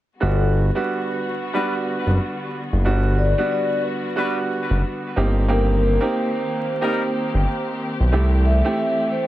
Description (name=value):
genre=hip hop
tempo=91 BPM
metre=4/4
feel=swing 59% on 16ths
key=G major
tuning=A4 = 440 Hz
part: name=vibraphone with soft mallets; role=melody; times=0.2-9.3 s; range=A4 to E5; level=-26 LUFS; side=left 1 dB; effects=high-pass filter, low-pass filter, plate reverb, ping-pong delay
part: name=warm grand piano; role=accompaniment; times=0.2-9.3 s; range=G3 to G4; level=-24 LUFS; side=right 3 dB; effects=cassette tape, high-pass filter, low-pass filter, plate reverb
part: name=warm studio string section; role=sustained chords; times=0.2-9.3 s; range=D3 to G4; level=-30 LUFS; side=left 3 dB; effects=high-pass filter, low-pass filter, plate reverb
part: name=smooth gliding synth bass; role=bass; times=0.2-8.6 s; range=F#1 to C2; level=-18 LUFS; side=equal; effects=none
part: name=dark trumpet section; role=stabs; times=1.5-7.0 s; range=G3 to B4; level=-29 LUFS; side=left 4 dB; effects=high-pass filter, low-pass filter, plate reverb, ping-pong delay
room=light reverb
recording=vinyl crackle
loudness=-18 LUFS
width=side -14 dB against mid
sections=0.2-9.3 A section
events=none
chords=0.2 Gmaj7; 5.2 Eb6/G; 8.1 C6